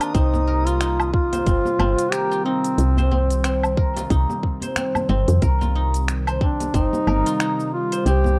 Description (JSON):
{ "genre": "organic downtempo", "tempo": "91 BPM", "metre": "4/4", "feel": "swing 58% on 16ths", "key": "unclear", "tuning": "A4 = 440 Hz", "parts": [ { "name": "mellow duduk", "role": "melody", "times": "0.0-8.4 s", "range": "C4 to G4", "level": "-26 LUFS", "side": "equal", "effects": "tape echo" }, { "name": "warbly tape-like pad", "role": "sustained chords", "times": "0.0-8.4 s", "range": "C3 to G4", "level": "-33 LUFS", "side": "equal", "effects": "chorus, built-in reverb, sidechain pumping" }, { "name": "guzheng", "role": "arpeggios", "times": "0.0-8.4 s", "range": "C4 to C5", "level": "-29 LUFS", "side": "equal", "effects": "analog delay" }, { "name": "afro-pop drum kit", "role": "drums", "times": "0.0-8.4 s", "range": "cabasa, finger snaps, hi-hat, woodblock", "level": "-30 LUFS", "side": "equal", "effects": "none" }, { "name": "woody FM bass", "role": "bass", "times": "0.1-8.4 s", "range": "G1 to F2", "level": "-23 LUFS", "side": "equal", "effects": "transformer saturation, sidechain pumping" }, { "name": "electronic kick drum", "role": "drums", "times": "0.1-6.9 s", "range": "none", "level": "-23 LUFS", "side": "equal", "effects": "none" }, { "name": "djembe", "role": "percussion", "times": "0.3-8.4 s", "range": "none", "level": "-33 LUFS", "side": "equal", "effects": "none" } ], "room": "digital ambience", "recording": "dry, gritty hardware recording, cassette tape", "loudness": "-20 LUFS", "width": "mono", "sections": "0.1-8.4 A section", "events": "none", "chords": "0.0 Eb6" }